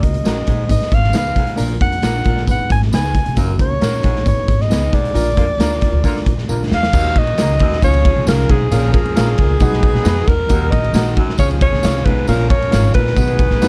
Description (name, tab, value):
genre	uptempo 1960s-style soul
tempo	135 BPM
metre	4/4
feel	straight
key	unclear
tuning	A4 = 441 Hz
part	breathy alto saxophone	melody	0.0-13.7 s	Ab4 to Ab5	-23 LUFS	equal	none
part	barky reed electric piano	accompaniment	0.0-13.7 s	Ab2 to F#5	-27 LUFS	equal	none
part	upright bass	bass	0.0-13.7 s	Gb1 to Eb3	-21 LUFS	equal	none
part	raw garage drum kit	drums	0.0-13.7 s	crash cymbal, hi-hat, kick drum, ride cymbal, snare drum	-19 LUFS	equal	none
part	mellow electric guitar	stabs	0.2-13.7 s	Ab3 to Db5	-27 LUFS	equal	tremolo
part	tambourine	percussion	0.3-13.7 s	none	-37 LUFS	equal	none
part	clear baritone saxophone	riff	0.5-13.1 s	Eb2 to Bb2	-28 LUFS	equal	none
part	warm horn section	second line	5.4-13.7 s	D3 to B4	-30 LUFS	equal	none
room	little or no reverb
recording	dark, warm production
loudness	-15 LUFS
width	mono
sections	0.0-6.9 A section; 6.9-13.7 B section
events	band accent 5.2-6.9; drum fill 6.5-6.9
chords	0.0 Gb; 0.7 Abm; 1.6 Bb; 2.5 Abm; 3.4 Gb; 4.3 Abm; 5.2 Bb; 6.9 Ebm; 7.8 Db; 8.7 Bbm; 9.6 B; 10.5 Ebm; 11.4 Db; 12.3 Bbm; 13.2 B